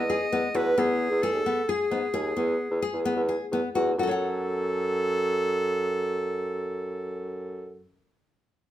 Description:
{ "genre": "contemporary instrumental, chamber music in an uneven meter", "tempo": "129 BPM", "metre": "7/4", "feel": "straight", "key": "F# dorian", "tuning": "A4 = 440 Hz", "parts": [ { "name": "clear clarinet", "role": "melody", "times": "0.0-7.8 s", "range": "G#4 to D#5", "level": "-28 LUFS", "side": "right 1 dB", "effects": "none" }, { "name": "nylon-string guitar", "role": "arpeggios", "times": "0.0-7.9 s", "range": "B3 to F#5", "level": "-29 LUFS", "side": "left 4 dB", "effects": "none" }, { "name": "mellow bassoon", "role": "bass", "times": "0.0-7.8 s", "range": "D#2 to G#2", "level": "-28 LUFS", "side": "equal", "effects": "none" } ], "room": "moderate studio reverb, RT60 0.7 s", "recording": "minimal, uncompressed stereo recording", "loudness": "-24 LUFS", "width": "side -12 dB against mid", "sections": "0.0-4.0 A section; 4.0-7.3 B section", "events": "slowing down 0.3-4.0", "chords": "0.0 E; 4.0 F#m", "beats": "0.33 | 0.78 1.23 1.69 2.14 2.60 3.06 3.52 | 3.99 4.46 4.93 5.39 5.86 6.33 6.80" }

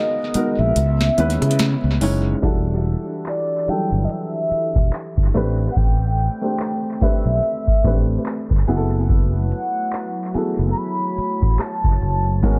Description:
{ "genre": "contemporary R&B", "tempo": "72 BPM", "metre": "4/4", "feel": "swing 58% on 16ths", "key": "unclear", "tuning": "A4 = 439 Hz", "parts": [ { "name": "mellow horn-like synth lead", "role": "melody", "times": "0.0-12.6 s", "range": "D5 to B5", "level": "-26 LUFS", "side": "equal", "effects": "chorus, tape echo" }, { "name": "dark baby grand piano", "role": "accompaniment", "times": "0.0-12.6 s", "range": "F#3 to C#5", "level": "-28 LUFS", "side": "equal", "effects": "tape echo" }, { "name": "hollow soft pad", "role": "sustained chords", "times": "0.0-12.6 s", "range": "C#3 to C#5", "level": "-32 LUFS", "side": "equal", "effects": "chorus" }, { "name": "fretless electric bass", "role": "bass", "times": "0.3-12.6 s", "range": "E1 to C#3", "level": "-22 LUFS", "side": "equal", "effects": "none" }, { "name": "booming analog drum machine", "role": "drums", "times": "0.3-12.6 s", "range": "handclaps, hi-hat, kick drum, rim click, snare drum, toms", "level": "-22 LUFS", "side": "equal", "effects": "none" } ], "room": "digital ambience", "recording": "echo-heavy mix, low-pass filter", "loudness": "-20 LUFS", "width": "mono", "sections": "0.0-2.4 A section; 2.4-12.6 B section", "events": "break 0.0-2.4; filter sweep 2.4-12.6; drum fill 12.4", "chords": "0.0 G#m9; 0.8 C#m9; 2.4 Em11; 5.3 Am11; 8.7 F#m11", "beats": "0.76 1.59 | 2.43 3.26 4.09 4.93 | 5.76 6.59 7.43 8.26 | 9.09 9.93 10.76 11.59 | 12.43" }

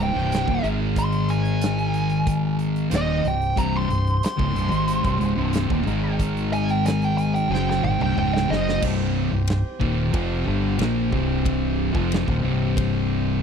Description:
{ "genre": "stoner and doom metal", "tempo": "92 BPM", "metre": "4/4", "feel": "straight", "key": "C phrygian", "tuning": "A4 = 437 Hz", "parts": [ { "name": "fuzz lead guitar", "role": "melody", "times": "0.0-8.8 s", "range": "Eb5 to C6", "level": "-26 LUFS", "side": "right 3 dB", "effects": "wah, distortion, slapback echo" }, { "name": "percussive tonewheel organ", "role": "sustained chords", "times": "0.0-13.4 s", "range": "Ab3 to G5", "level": "-36 LUFS", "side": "right 2 dB", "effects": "overdrive, wide subtle chorus" }, { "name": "overdriven semi-hollow guitar", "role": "riff", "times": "0.0-13.4 s", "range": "C2 to Bb3", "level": "-28 LUFS", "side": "equal", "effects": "none" }, { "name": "thick fuzz guitar", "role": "riff", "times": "0.0-13.4 s", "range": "C2 to Bb3", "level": "-26 LUFS", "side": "left 9 dB", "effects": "distortion" }, { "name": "thick fuzz guitar", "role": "riff", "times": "0.0-13.4 s", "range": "C2 to Bb3", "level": "-28 LUFS", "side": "right 10 dB", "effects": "distortion" }, { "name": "fingered electric bass", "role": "bass", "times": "0.0-13.4 s", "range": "C1 to Bb1", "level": "-26 LUFS", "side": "equal", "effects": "tube saturation" }, { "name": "big rock drum kit", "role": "drums", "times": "0.2-12.9 s", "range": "crash cymbal, hi-hat, kick drum, ride cymbal, snare drum, toms", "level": "-28 LUFS", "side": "right 1 dB", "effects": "none" } ], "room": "little or no reverb", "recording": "dry, close 1970s-style studio recording", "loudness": "-20 LUFS", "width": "side -7 dB against mid", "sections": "0.0-8.8 A section; 8.8-13.4 B section", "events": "lead electric guitar solo 0.0-8.8; drum fill 7.5-8.8", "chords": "0.0 Cm; 0.6 Ab5; 2.9 Cm; 5.9 Ab5; 7.5 Cm", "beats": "0.32 | 0.97 1.62 2.27 2.92 | 3.58 4.23 4.88 5.54 | 6.19 6.85 7.51 8.16 | 8.82 9.48 10.13 10.79 | 11.45 12.11 12.77" }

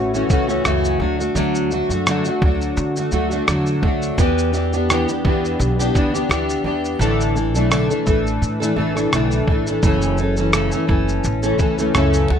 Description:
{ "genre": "acoustic pop", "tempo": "85 BPM", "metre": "4/4", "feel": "swing 55% on 16ths", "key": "unclear", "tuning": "A4 = 437 Hz", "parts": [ { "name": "fingerpicked plugged-in steel-string acoustic guitar", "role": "accompaniment", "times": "0.0-12.4 s", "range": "F#2 to A4", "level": "-18 LUFS", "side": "equal", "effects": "double-tracked left and right" }, { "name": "upright bass", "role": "bass", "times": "0.0-12.4 s", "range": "F#1 to D3", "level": "-22 LUFS", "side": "equal", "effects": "none" }, { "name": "dusty soul sampler-style drum kit", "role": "drums", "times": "0.1-12.3 s", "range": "kick drum, rim click, shaker", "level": "-20 LUFS", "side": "equal", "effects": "none" } ], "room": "light reverb", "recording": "none", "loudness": "-16 LUFS", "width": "side -8 dB against mid", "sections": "0.0-12.4 A section", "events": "none", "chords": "0.0 F#m7; 1.0 D; 4.2 Em7; 7.0 Asus4; 9.8 F#m7", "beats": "0.65 | 1.36 2.06 2.77 3.48 | 4.18 4.89 5.59 6.30 | 7.01 7.71 8.42 9.12 | 9.83 10.54 11.24 11.95" }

